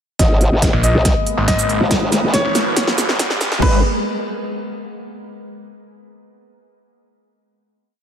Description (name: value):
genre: heavy wobble dubstep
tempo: 140 BPM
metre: 4/4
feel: half-time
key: G# minor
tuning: A4 = 443 Hz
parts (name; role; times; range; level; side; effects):
- warm grand piano; melody; 0.2-3.8 s; B4 to D#5; -22 LUFS; left 1 dB; low-pass filter, ping-pong delay
- evolving wavetable pad; sustained chords; 0.8-3.8 s; G#3 to B3; -26 LUFS; right 1 dB; phaser, built-in reverb, sidechain pumping
- growl bass; bass; 0.2-3.8 s; G#1 to B1; -17 LUFS; equal; chorus, overdrive
- big-room dance drum kit; drums; 0.2-3.7 s; crash cymbal, hi-hat, shaker, snare drum; -20 LUFS; equal; studio ambience
- electronic kick drum; drums; 0.2-3.7 s; none; -19 LUFS; equal; studio ambience
- riser; sound effects; 1.3-3.6 s; none; -26 LUFS; left 1 dB; none
- snarling distorted saw bass; bass; 0.7-3.6 s; G#1 to A#1; -20 LUFS; equal; distortion, overdrive
room: light reverb, digital ambience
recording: high-pass filter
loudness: -14 LUFS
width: side -9 dB against mid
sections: 0.2-3.6 build; 3.6-5.3 final chord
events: build-up 0.2-3.6; drum fill 0.2-3.6; filter sweep on grand piano 0.2-3.6; filter sweep 0.2-3.6; riser 1.3-3.6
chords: 0.2 G#madd9